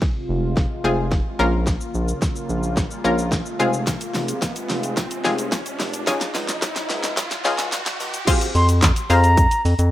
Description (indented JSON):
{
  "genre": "dance-pop",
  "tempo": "109 BPM",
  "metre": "4/4",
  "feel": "straight",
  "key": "F minor",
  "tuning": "A4 = 440 Hz",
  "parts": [
    { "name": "analog pluck", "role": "accompaniment", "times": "0.0-9.8 s", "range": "Ab3 to F5", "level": "-22 LUFS", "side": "left 2 dB", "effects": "chorus, sidechain pumping" },
    { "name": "sweeping resonant pad", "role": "sustained chords", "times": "0.0-8.3 s", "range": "C3 to F4", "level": "-30 LUFS", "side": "equal", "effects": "chorus, sidechain pumping" },
    { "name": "pop drum kit", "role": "drums", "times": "0.0-9.9 s", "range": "crash cymbal, handclaps, hi-hat, kick drum, shaker, snare drum", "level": "-22 LUFS", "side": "equal", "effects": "none" },
    { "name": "riser", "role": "sound effects", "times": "1.3-8.3 s", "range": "none", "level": "-32 LUFS", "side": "right 2 dB", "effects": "none" },
    { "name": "round analog bass", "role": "bass", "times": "0.3-9.9 s", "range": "F1 to F2", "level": "-21 LUFS", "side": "equal", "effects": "sidechain pumping" },
    { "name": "egg shaker", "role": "percussion", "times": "3.9-9.9 s", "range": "none", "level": "-42 LUFS", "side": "right 6 dB", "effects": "none" },
    { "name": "reedy concert flute", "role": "melody", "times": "8.6-9.6 s", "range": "Bb5 to C6", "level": "-20 LUFS", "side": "equal", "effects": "digital delay" }
  ],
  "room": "light reverb, digital ambience",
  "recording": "rough home demo mix, high-pass filter",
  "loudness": "-18 LUFS",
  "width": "side -14 dB against mid",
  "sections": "0.0-8.3 A section; 8.3-9.9 B section",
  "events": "build-up 0.0-8.3; drum fill 0.0-8.3; filter sweep 0.0-8.3; riser 1.3-8.3; drop 8.3-9.9",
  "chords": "0.0 Fm; 1.4 Bbm; 3.6 Fm; 6.1 Dbadd9; 8.3 Fm",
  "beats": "0.02 0.57 1.12 | 1.67 2.22 2.77 3.32 | 3.87 4.42 4.97 5.52 | 6.07 6.62 7.17 7.72 | 8.28 8.82 9.38"
}